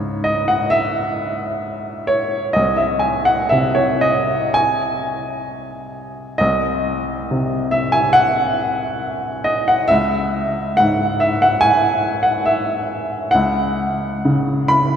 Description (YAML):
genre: classical, romantic nocturne for solo piano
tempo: 54-72 BPM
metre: 4/4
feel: rubato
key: unclear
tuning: A4 = 440 Hz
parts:
  - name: clear upright piano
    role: solo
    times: 0.0-15.0 s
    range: B#1 to B5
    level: -16 LUFS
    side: equal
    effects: none
room: wet cathedral reverb, RT60 4.5 s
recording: none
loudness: -16 LUFS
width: side -8 dB against mid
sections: 0.0-15.0 A section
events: none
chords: 0.0 C#m; 2.6 N.C.; 9.9 C#m; 13.3 N.C.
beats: 0.73 1.65 | 2.58 3.52 4.58 5.51 | 6.40 7.29 8.15 9.03 | 9.90 10.78 11.63 12.48 | 13.34 14.24